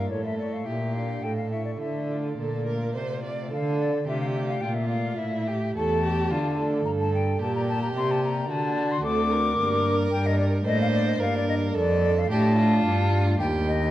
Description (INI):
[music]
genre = classical, baroque-style sonata movement with continuo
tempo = 109 BPM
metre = 3/4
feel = rubato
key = D minor, G minor from 10.1 s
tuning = A4 = 440 Hz
[part]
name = mellow hollow silver concert flute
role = melody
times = 0.0-13.9 s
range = C#5 to D6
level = -30 LUFS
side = left 5 dB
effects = none
[part]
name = warm violin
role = second line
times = 0.0-13.9 s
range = E4 to D5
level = -29 LUFS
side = right 3 dB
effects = none
[part]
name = pipe organ, sparkling flutes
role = accompaniment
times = 0.0-13.9 s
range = D2 to D5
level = -30 LUFS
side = equal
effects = none
[part]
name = warm cello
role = bass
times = 0.0-13.9 s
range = D2 to D3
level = -26 LUFS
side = right 1 dB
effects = none
[sound]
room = wet recital hall reverb, RT60 1.9 s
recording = worn, warbling old tape, cassette tape, warbly pitch drift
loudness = -22 LUFS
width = side -14 dB against mid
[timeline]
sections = 0.0-3.5 A section; 3.5-13.9 B section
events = none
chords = 0.1 A; 0.7 Bb; 1.2 A; 1.8 Dm; 5.2 A7; 6.3 Dm; 6.9 Gm; 8.5 D7; 9.6 Gm; 11.8 Dm/F; 13.4 Cm/Eb (rootless)